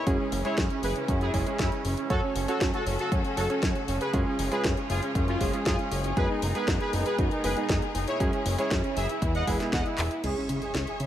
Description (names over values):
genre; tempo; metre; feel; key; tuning
italo disco; 118 BPM; 4/4; straight; unclear; A4 = 435 Hz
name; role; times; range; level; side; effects
analog synth brass; melody; 0.0-11.1 s; C#4 to F#5; -30 LUFS; right 1 dB; chorus, ping-pong delay
clear symphonic string section; sustained chords; 0.0-11.1 s; B2 to C#6; -35 LUFS; left 2 dB; none
warm electric grand piano; stabs; 0.0-11.1 s; G#3 to C#5; -34 LUFS; right 3 dB; none
fat analog bass; bass; 0.1-11.1 s; E1 to C#3; -30 LUFS; equal; none
electronic kick drum; drums; 0.1-9.8 s; none; -30 LUFS; equal; overdrive
house drum kit; drums; 0.1-11.1 s; crash cymbal, handclaps, hi-hat, snare drum; -34 LUFS; equal; overdrive
impact; sound effects; 10.2-11.1 s; none; -40 LUFS; equal; none
room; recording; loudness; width
digital ambience; none; -25 LUFS; side -11 dB against mid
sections
0.0-10.2 A section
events
drum fill 10.0; impact 10.2-11.1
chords
0.1 C#m/F#; 2.1 F#m; 4.1 C#/F#; 6.2 G#m/F#; 8.2 C#m/F#; 9.2 E; 10.2 C#m